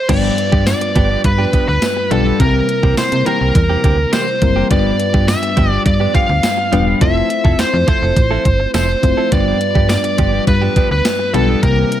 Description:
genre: 1980s-style pop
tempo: 104 BPM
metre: 4/4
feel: straight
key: unclear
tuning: A4 = 440 Hz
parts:
  - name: smooth overdriven lead guitar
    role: melody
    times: 0.0-12.0 s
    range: A4 to F5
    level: -18 LUFS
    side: right 1 dB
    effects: digital delay
  - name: mellow FM electric piano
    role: accompaniment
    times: 0.1-12.0 s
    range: G2 to C5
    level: -19 LUFS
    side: left 6 dB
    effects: chorus
  - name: direct-recorded clean electric guitar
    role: riff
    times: 0.1-12.0 s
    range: E3 to A4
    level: -23 LUFS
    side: right 5 dB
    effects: wide subtle chorus
  - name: slap-like FM bass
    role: bass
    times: 0.1-11.8 s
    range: E1 to C3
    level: -17 LUFS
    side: equal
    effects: none
  - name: clean 12-bit digital drum machine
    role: drums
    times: 0.1-12.0 s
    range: crash cymbal, hi-hat, kick drum, snare drum, tambourine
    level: -16 LUFS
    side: right 1 dB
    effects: overdrive, gated reverb
  - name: tambourine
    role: percussion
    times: 0.7-11.2 s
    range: none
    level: -33 LUFS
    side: left 6 dB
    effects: none
room: light reverb, digital ambience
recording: none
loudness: -12 LUFS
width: side -11 dB against mid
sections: 0.1-12.0 A section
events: none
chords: 0.1 G7; 2.4 C7; 4.7 G7; 7.0 Fmaj7; 9.3 G7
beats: | 0.09 0.67 1.24 1.82 | 2.40 2.98 3.55 4.13 | 4.71 5.28 5.86 6.44 | 7.01 7.59 8.17 8.74 | 9.32 9.90 10.47 11.05 | 11.63

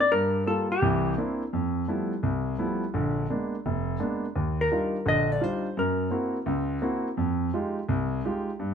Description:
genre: jazz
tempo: 170 BPM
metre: 4/4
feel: swing 65% on 8ths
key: unclear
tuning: A4 = 440 Hz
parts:
  - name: hollow-body jazz guitar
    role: melody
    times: 0.0-1.1, 4.6-6.4 s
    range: G4 to Eb5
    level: -26 LUFS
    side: left 1 dB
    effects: none
  - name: warm concert grand piano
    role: accompaniment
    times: 0.1-8.7 s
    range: F1 to G4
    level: -26 LUFS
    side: equal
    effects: none
room: light reverb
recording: minimal, uncompressed stereo recording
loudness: -25 LUFS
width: side -7 dB against mid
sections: 0.0-8.7 A section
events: none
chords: 0.1 Gm7; 0.8 C9; 1.5 Fmaj9#11; 2.9 Bb7b9; 4.4 Ebmaj9; 5.8 F#7#11; 7.2 Fm9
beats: | 0.11 0.46 0.82 1.17 | 1.52 1.88 2.23 2.58 | 2.94 3.29 3.65 4.00 | 4.35 4.71 5.06 5.41 | 5.77 6.12 6.48 6.83 | 7.18 7.54 7.89 8.25 | 8.60

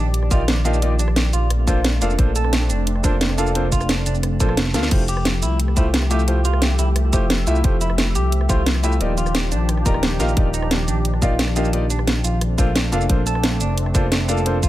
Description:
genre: liquid drum and bass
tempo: 176 BPM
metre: 4/4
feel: straight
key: unclear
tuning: A4 = 440 Hz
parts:
  - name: warm analog pad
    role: sustained chords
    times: 0.0-14.7 s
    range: Eb3 to E5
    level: -27 LUFS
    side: equal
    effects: chorus, sidechain pumping
  - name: clean electric guitar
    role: arpeggios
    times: 0.0-14.7 s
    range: D4 to Bb4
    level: -28 LUFS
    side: right 2 dB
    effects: wide subtle chorus, digital delay
  - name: smooth synth bass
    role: bass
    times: 0.0-14.7 s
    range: Eb1 to D2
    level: -20 LUFS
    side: equal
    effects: tube saturation
  - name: garage drum kit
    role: drums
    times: 0.1-14.7 s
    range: crash cymbal, hi-hat, rim click, shaker, snare drum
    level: -23 LUFS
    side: right 1 dB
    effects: none
  - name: warm grand piano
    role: accompaniment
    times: 0.3-14.6 s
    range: A3 to F5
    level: -26 LUFS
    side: left 1 dB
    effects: dub echo
  - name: electronic kick drum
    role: drums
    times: 0.3-14.7 s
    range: none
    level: -19 LUFS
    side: equal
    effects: none
room: light reverb, digital ambience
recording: none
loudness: -16 LUFS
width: side -15 dB against mid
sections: 0.0-14.7 A section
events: drum fill 4.7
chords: 0.0 Ebmaj9; 1.5 Bbmaj9; 4.9 Fmaj9; 9.0 Ebmaj9; 12.4 Bbmaj9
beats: 0.14 0.48 | 0.82 1.16 1.50 1.85 | 2.19 2.53 2.87 3.21 | 3.55 3.89 4.23 4.57 | 4.91 5.25 5.60 5.94 | 6.28 6.62 6.96 7.30 | 7.64 7.98 8.32 8.66 | 9.01 9.35 9.69 10.03 | 10.37 10.71 11.05 11.39 | 11.73 12.07 12.41 12.76 | 13.10 13.44 13.78 14.12 | 14.46

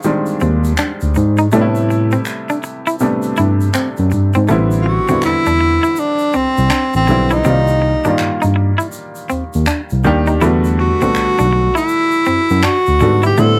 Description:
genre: R&B, neo-soul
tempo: 81 BPM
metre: 4/4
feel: swing 62% on 16ths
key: A dorian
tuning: A4 = 440 Hz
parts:
  - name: clear concert grand piano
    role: accompaniment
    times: 0.0-13.6 s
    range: C3 to D5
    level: -21 LUFS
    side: equal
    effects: none
  - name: egg shaker and finger snaps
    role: percussion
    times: 0.0-13.6 s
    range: none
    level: -29 LUFS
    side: equal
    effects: none
  - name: semi-hollow electric guitar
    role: second line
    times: 0.4-13.5 s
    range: A3 to E4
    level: -22 LUFS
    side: equal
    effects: none
  - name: tine electric piano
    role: bass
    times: 0.4-13.6 s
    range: A1 to A2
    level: -18 LUFS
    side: equal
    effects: overdrive
  - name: breathy tenor saxophone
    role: melody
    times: 4.8-13.6 s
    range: C4 to A4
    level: -17 LUFS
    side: equal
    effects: none
room: light reverb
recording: none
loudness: -15 LUFS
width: mono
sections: 0.0-4.5 A section; 4.5-13.6 B section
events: none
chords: 0.0 Fm9; 1.5 Am9; 4.5 Am11; 7.4 Cm11; 10.4 Em11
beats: 0.04 0.78 | 1.52 2.26 3.00 3.74 | 4.48 5.22 5.96 6.71 | 7.45 8.19 8.93 9.67 | 10.41 11.15 11.89 12.63 | 13.37

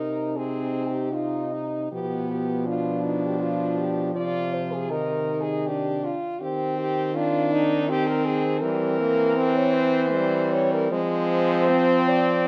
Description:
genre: classical, lyrical piece for horn quartet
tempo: 80 BPM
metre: 3/4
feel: rubato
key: C minor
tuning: A4 = 437 Hz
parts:
  - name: mellow French horn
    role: melody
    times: 0.0-12.5 s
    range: Eb4 to D5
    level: -30 LUFS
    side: equal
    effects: none
  - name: warm French horn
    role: second line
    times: 0.0-12.5 s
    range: G3 to F4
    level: -29 LUFS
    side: equal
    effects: none
  - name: mellow French horn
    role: accompaniment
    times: 0.0-12.5 s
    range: Eb3 to Eb4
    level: -31 LUFS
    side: equal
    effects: none
  - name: mellow French horn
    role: bass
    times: 0.0-12.5 s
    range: B2 to F3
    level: -30 LUFS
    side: equal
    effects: none
room: light reverb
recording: none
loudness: -24 LUFS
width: mono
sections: 0.0-12.5 A section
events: none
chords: 0.0 Cm; 1.9 G7/B; 4.2 Cm; 6.4 Cm/Eb; 8.6 C7/E; 10.9 Fm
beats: 0.36 1.14 | 1.92 2.68 3.42 | 4.16 4.91 5.67 | 6.42 7.16 7.89 | 8.63 9.37 10.14 | 10.93 11.70 12.47

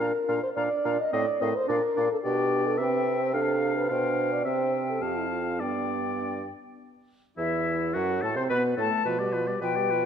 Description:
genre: quick classical-period movement for wind quintet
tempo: 106 BPM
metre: 2/4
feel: rubato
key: unclear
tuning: A4 = 440 Hz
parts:
  - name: silver concert flute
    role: melody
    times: 0.0-10.1 s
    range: E5 to C6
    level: -34 LUFS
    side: left 9 dB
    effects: none
  - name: warm oboe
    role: second line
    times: 0.0-10.1 s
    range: E4 to F5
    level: -33 LUFS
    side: left 4 dB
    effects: none
  - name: breathy clarinet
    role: accompaniment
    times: 0.0-10.1 s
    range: B3 to C5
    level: -34 LUFS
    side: right 7 dB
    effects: none
  - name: mellow French horn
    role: accompaniment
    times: 0.0-10.1 s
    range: E3 to Eb5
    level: -29 LUFS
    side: equal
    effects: none
  - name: warm bassoon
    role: bass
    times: 0.0-10.1 s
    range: E2 to C3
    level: -30 LUFS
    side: right 2 dB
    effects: none
room: wet scoring stage reverb, RT60 1.7 s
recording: none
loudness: -24 LUFS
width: side -8 dB against mid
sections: 0.0-6.8 A section; 6.8-10.1 B section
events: none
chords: 0.0 Bb; 1.1 F7/A (rootless); 1.7 Bb; 2.2 G/B; 2.8 C; 3.3 Dm7/C; 3.9 G7/B; 4.5 C; 5.0 F; 5.6 G; 6.8 N.C.; 7.9 Am69/F#; 9.1 G7/B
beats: 0.56 | 1.13 1.69 | 2.24 2.79 | 3.34 3.89 | 4.45 5.02 | 5.61 6.20 | 6.79 7.38 | 7.95 8.51 | 9.05 9.62

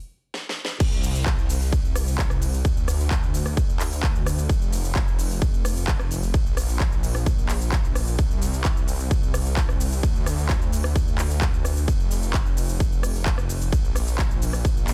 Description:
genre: EDM, festival progressive house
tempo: 130 BPM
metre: 4/4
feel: straight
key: unclear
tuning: A4 = 441 Hz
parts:
  - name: big-room dance drum kit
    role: drums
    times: 0.3-14.9 s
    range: crash cymbal, handclaps, hi-hat, ride cymbal, rim click, shaker, snare drum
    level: -33 LUFS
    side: equal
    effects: high-pass filter on hats, studio reverb, high-pass filter on perc, high-pass filter on snare, high-pass filter on cymbals
  - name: detuned saw bass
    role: bass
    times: 0.8-14.9 s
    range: F1 to D2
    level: -28 LUFS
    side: equal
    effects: chorus, sidechain pumping
  - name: electronic kick drum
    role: drums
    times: 0.8-14.7 s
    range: none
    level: -25 LUFS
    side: equal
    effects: studio reverb
room: little or no reverb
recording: dense, heavily limited modern master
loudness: -23 LUFS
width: mono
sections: 0.8-14.9 A section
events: stop 0.0-0.8; drum fill 0.3-0.8; drop 0.8-14.9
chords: none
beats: 0.34 | 0.80 1.26 1.72 2.19 | 2.65 3.11 3.57 4.03 | 4.49 4.96 5.42 5.88 | 6.34 6.80 7.26 7.72 | 8.19 8.65 9.11 9.57 | 10.03 10.49 10.96 11.42 | 11.88 12.34 12.80 13.26 | 13.72 14.19 14.65

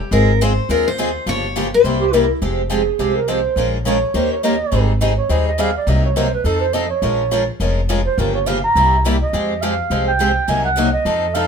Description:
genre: acoustic string swing (jazz manouche)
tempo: 208 BPM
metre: 4/4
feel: swing 58% on 8ths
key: F minor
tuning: A4 = 440 Hz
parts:
  - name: picked steel-string acoustic guitar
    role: melody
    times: 0.0-2.3 s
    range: Bb4 to Db5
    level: -17 LUFS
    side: left 6 dB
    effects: none
  - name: picked steel-string acoustic guitar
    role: accompaniment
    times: 0.1-11.5 s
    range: C3 to Bb4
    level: -22 LUFS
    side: left 4 dB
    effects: none
  - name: picked steel-string acoustic guitar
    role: accompaniment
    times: 0.1-11.5 s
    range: C3 to Bb4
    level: -25 LUFS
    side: right 6 dB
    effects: none
  - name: upright bass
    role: bass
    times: 0.1-11.5 s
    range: F1 to F2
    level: -20 LUFS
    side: equal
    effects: none
  - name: breathy clarinet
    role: second line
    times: 2.0-11.5 s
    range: E4 to Bb5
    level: -19 LUFS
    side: right 4 dB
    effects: none
room: moderate studio reverb, RT60 0.7 s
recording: minimal, uncompressed stereo recording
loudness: -15 LUFS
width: side -6 dB against mid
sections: 0.0-2.4 A section; 2.4-11.5 B section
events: clarinet solo 2.4-11.5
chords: 0.1 Ab69; 1.3 Gm7b5; 1.8 C7; 2.4 Fmadd9; 3.6 Bbm7; 4.2 Eb7; 4.7 Abmaj7; 5.9 Cm7b5; 6.5 F7; 7.0 Bbm7; 8.2 Gm7b5; 8.8 C7; 9.3 Fmadd9; 10.5 Cm7b5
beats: | 0.12 0.41 0.69 0.98 | 1.27 1.56 1.85 2.13 | 2.42 2.71 3.00 3.29 | 3.58 3.86 4.15 4.44 | 4.73 5.02 5.30 5.59 | 5.88 6.17 6.46 6.74 | 7.03 7.32 7.61 7.90 | 8.18 8.47 8.76 9.05 | 9.34 9.62 9.91 10.20 | 10.49 10.78 11.06 11.35

